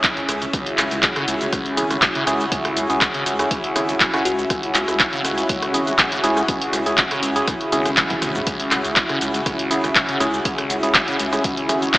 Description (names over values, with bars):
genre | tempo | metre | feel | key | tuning
acid house | 121 BPM | 4/4 | straight | C# minor | A4 = 440 Hz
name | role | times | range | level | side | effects
warm analog pad | sustained chords | 0.0-12.0 s | C#3 to G#4 | -24 LUFS | equal | chorus, sidechain pumping
liquid acid bass | riff | 0.0-12.0 s | B1 to C#3 | -27 LUFS | equal | phaser, tube saturation, wide subtle chorus, diffuse ambient delay
electronic kick drum | drums | 0.0-12.0 s | none | -28 LUFS | equal | none
punchy analog drum machine | drums | 0.0-12.0 s | handclaps, hi-hat, rim click, shaker, toms | -20 LUFS | equal | none
warbly tape-like pad | texture | 0.0-12.0 s | C#4 to G#5 | -30 LUFS | equal | chorus, built-in reverb, phaser, sidechain pumping
round analog bass | bass | 0.3-11.9 s | G#1 to C#2 | -34 LUFS | equal | sidechain pumping
percussive organ stab | stabs | 1.8-12.0 s | C#4 to G#4 | -24 LUFS | right 1 dB | chorus, diffuse ambient delay
bell-like FM electric piano | melody | 4.3-4.7 s | F#4 | -28 LUFS | left 2 dB | chorus, phaser, diffuse ambient delay
room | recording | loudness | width
wet lush hall reverb, RT60 1.7 s, digital ambience | dreamy mix soaked in reverb, AM radio sound | -17 LUFS | side -19 dB against mid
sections
0.0-12.0 A section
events
drum fill 8.0-8.5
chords
0.0 C#m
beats
0.04 | 0.53 1.03 1.53 2.02 | 2.52 3.01 3.51 4.00 | 4.50 5.00 5.49 5.99 | 6.48 6.98 7.48 7.97 | 8.47 8.96 9.46 9.96 | 10.45 10.95 11.44 11.94